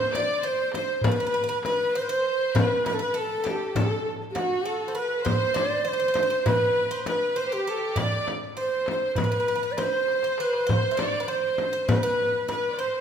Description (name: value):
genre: Turkish makam ensemble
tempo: 199 BPM (eighths)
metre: 9/8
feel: straight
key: unclear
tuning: A4 = 440 Hz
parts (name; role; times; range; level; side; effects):
- breathy ney; melody; 0.0-13.0 s; F#4-28c to D5; -26 LUFS; right 1 dB; none
- Greek bouzouki; second line; 0.0-13.0 s; F#4-30c to E5; -33 LUFS; right 1 dB; none
- clear symphonic violin section; second line; 0.0-13.0 s; F#4-30c to D5; -32 LUFS; equal; none
- darbuka; percussion; 0.1-12.9 s; none; -32 LUFS; right 1 dB; none
- frame drum; percussion; 0.1-12.6 s; none; -30 LUFS; left 3 dB; none
room: wet recital hall reverb, RT60 1.7 s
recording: minimal, uncompressed stereo recording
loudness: -23 LUFS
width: side -8 dB against mid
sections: 0.0-13.0 A section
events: drum fill 10.1-10.7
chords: none